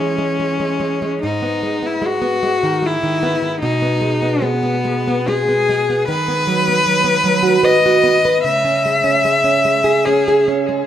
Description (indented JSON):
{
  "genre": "romantic duo for cello and classical guitar",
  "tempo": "75 BPM",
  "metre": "3/4",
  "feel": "uneven beats, rubato",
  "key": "unclear",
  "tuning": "A4 = 440 Hz",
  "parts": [
    { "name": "rich cello", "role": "melody", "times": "0.0-10.5 s", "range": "B3 to E5", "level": "-16 LUFS", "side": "left 2 dB", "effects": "plate reverb, tape echo" },
    { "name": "nylon-string guitar", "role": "accompaniment", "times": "0.0-10.9 s", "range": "G#2 to B4", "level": "-18 LUFS", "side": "right 2 dB", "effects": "plate reverb" }
  ],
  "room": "moderate studio reverb, RT60 0.7 s",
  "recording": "rough home demo mix",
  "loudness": "-14 LUFS",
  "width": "side -10 dB against mid",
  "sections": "0.0-10.9 A section",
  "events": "none",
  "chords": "0.0 C#m/E; 1.2 G#m; 3.6 G#m/B; 6.1 B/D#; 8.4 C#m"
}